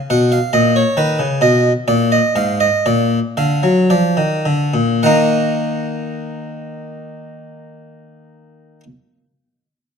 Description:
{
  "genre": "classical, baroque-style two-part invention for harpsichord",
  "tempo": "51-71 BPM",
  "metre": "3/4",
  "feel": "straight",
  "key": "Eb minor",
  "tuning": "A4 = 438 Hz",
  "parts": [
    { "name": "harpsichord", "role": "solo", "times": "0.1-8.8 s", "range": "Ab2 to Gb5", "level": "-14 LUFS", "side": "equal", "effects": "none" }
  ],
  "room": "moderate recital hall reverb, RT60 1.4 s",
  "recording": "close, detailed microphones",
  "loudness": "-13 LUFS",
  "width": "side -6 dB against mid",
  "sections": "0.0-5.0 A section; 5.0-8.5 B section",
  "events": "slowing down 0.0-5.0",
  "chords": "0.0 Ebm; 1.0 Badd9; 1.9 Bb; 5.0 Ebm",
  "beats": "0.10 0.97 | 1.89 2.86 3.90 | 5.03 6.20 7.38"
}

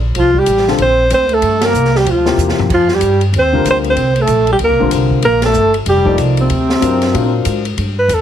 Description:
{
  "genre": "modal jazz",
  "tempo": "189 BPM",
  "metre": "4/4",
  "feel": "swing 61% on 8ths",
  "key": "unclear",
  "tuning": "A4 = 440 Hz",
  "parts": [
    { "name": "upright bass", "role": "bass", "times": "0.0-8.2 s", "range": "F1 to A#2", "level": "-16 LUFS", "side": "equal", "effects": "none" },
    { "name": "trombone with plunger mute", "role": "second line", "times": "0.1-7.4 s", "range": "C3 to C4", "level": "-20 LUFS", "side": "right 7 dB", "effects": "none" },
    { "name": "open jazz drum kit", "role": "drums", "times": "0.1-8.2 s", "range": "crash cymbal, hi-hat, kick drum, ride cymbal, snare drum, toms", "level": "-22 LUFS", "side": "left 1 dB", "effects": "none" },
    { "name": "warm alto saxophone", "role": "melody", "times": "0.2-8.2 s", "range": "C4 to C5", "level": "-13 LUFS", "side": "equal", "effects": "none" },
    { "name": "warm baby grand piano", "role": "accompaniment", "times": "0.7-7.6 s", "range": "C3 to D5", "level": "-17 LUFS", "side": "left 6 dB", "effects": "none" }
  ],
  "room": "light reverb",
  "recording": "heavily compressed radio sound",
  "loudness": "-11 LUFS",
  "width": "side -10 dB against mid",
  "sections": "0.0-7.8 A section",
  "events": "band accent 1.6, 5.4; drum fill 2.4-2.7",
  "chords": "0.0 C9sus4; 2.7 F9sus4; 6.5 D7alt",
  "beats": "| 0.16 0.47 0.79 1.11 | 1.43 1.75 2.06 2.38 | 2.70 3.02 3.33 3.65 | 3.97 4.29 4.60 4.92 | 5.24 5.55 5.87 6.19 | 6.50 6.82 7.14 7.46 | 7.78 8.09"
}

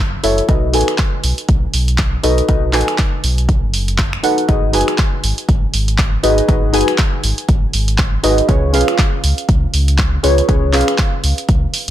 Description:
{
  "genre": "deep house",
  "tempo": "120 BPM",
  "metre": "4/4",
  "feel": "swing 58% on 16ths",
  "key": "unclear",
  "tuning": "A4 = 440 Hz",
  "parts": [
    { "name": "deep mellow chord stab", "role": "stabs", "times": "0.0-11.9 s", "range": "C#4 to G#5", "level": "-16 LUFS", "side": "equal", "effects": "chorus, cassette tape, sidechain pumping, tape echo" },
    { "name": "sub bass with octave", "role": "bass", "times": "0.0-11.9 s", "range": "F#1 to C#2", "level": "-17 LUFS", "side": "equal", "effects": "sidechain pumping" },
    { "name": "punchy analog drum machine", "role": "drums", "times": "0.2-11.9 s", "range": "finger snaps, handclaps, hi-hat", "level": "-20 LUFS", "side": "right 1 dB", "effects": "none" },
    { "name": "electronic kick drum", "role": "drums", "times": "0.5-11.6 s", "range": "none", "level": "-16 LUFS", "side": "equal", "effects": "overdrive" }
  ],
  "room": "digital ambience",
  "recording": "dense, heavily limited modern master",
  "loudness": "-13 LUFS",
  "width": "side -12 dB against mid",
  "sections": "0.0-11.9 A section",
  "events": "none",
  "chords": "0.5 B7; 4.5 G#m7; 8.5 C#7",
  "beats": "| 0.49 0.99 1.49 1.99 | 2.49 2.99 3.49 3.99 | 4.49 4.99 5.49 5.99 | 6.49 6.99 7.49 7.99 | 8.49 8.99 9.49 9.99 | 10.49 10.99 11.49"
}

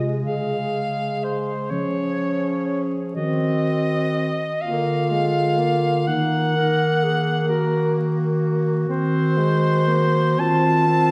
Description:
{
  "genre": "classical, lyrical piece for single-reed quartet",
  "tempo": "41 BPM (dotted quarters)",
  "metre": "6/8",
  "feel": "rubato",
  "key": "unclear",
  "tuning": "A4 = 440 Hz",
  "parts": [
    { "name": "clear soprano saxophone", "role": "melody", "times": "0.0-11.1 s", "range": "Bb4 to A5", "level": "-26 LUFS", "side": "equal", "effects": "none" },
    { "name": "warm clarinet", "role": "second line", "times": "0.0-11.1 s", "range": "Eb4 to Bb4", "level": "-28 LUFS", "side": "equal", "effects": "none" },
    { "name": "warm tenor saxophone", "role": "accompaniment", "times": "0.0-11.1 s", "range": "Ab3 to Db4", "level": "-29 LUFS", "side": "equal", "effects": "none" },
    { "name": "dark bass clarinet", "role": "bass", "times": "0.0-11.1 s", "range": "C3 to F3", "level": "-26 LUFS", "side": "equal", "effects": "none" }
  ],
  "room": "wet scoring stage reverb, RT60 2.1 s",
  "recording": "recorded in a church or concert hall, vinyl crackle",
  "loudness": "-21 LUFS",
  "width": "mono",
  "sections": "0.0-11.1 A section",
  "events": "none",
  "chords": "0.3 Db; 3.2 Ebm; 4.6 Bb7/D; 6.1 Ebm; 8.9 Cm7b5/Eb; 10.4 F7/Eb",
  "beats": "| 0.25 1.72 | 3.17 4.63 | 6.07 7.47 | 8.88 10.39"
}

